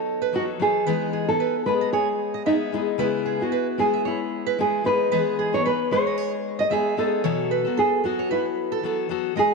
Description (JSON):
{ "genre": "acoustic pop", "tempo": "113 BPM", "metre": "4/4", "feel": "swing 55% on 16ths", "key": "E major", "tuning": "A4 = 440 Hz", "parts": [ { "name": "nylon-string guitar", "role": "melody", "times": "0.0-9.5 s", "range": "D#4 to D#5", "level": "-23 LUFS", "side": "right 2 dB", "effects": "none" }, { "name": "fingerpicked steel-string acoustic guitar", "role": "accompaniment", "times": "0.0-9.5 s", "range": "B2 to A4", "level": "-26 LUFS", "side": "left 12 dB", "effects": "none" }, { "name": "fingerpicked steel-string acoustic guitar", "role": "arpeggios", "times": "0.2-9.5 s", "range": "G#4 to E5", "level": "-29 LUFS", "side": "right 11 dB", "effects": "none" } ], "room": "moderate plate reverb, RT60 2.4 s", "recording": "1960s-style stereo with parts hard left and right", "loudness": "-21 LUFS", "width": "side -3 dB against mid", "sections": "0.0-9.4 A section", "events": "none", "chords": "0.0 B7; 0.9 Emaj7; 3.0 C#m7; 4.9 Emaj7; 7.2 B7sus4" }